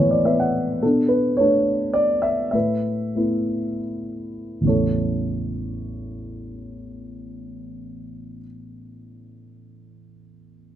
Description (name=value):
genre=classical, lyrical solo piano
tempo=70-107 BPM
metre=3/4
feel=rubato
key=A major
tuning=A4 = 441 Hz
part: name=dark concert grand piano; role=solo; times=0.0-10.8 s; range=A1 to F#5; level=-21 LUFS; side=equal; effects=none
room=light reverb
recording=dark, warm production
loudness=-19 LUFS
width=side -11 dB against mid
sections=0.8-4.7 A section; 4.7-9.6 B section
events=grand piano fill 0.0-0.8; slowing down 0.8-4.7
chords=0.0 Asus2; 0.8 Bm7; 2.5 Asus2; 4.7 A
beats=0.26 | 0.83 1.40 1.96 | 2.54 3.16 3.85 | 4.65 5.48 6.29 | 7.10 7.92 8.75